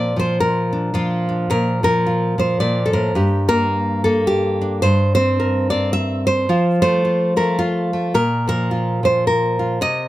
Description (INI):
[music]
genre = folk, solo fingerstyle acoustic guitar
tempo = 108 BPM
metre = 3/4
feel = swing 60% on 8ths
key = Bb major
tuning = A4 = 440 Hz
[part]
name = nylon-string guitar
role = solo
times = 0.0-10.1 s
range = G2 to E5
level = -16 LUFS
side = equal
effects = none
[sound]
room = light reverb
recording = close, detailed microphones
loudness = -16 LUFS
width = side -15 dB against mid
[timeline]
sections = 0.0-1.5 A section; 1.5-10.1 A section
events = none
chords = 0.0 Bb; 1.5 Bb5; 3.2 Gm; 4.8 C5/G; 6.5 F; 8.1 Bb5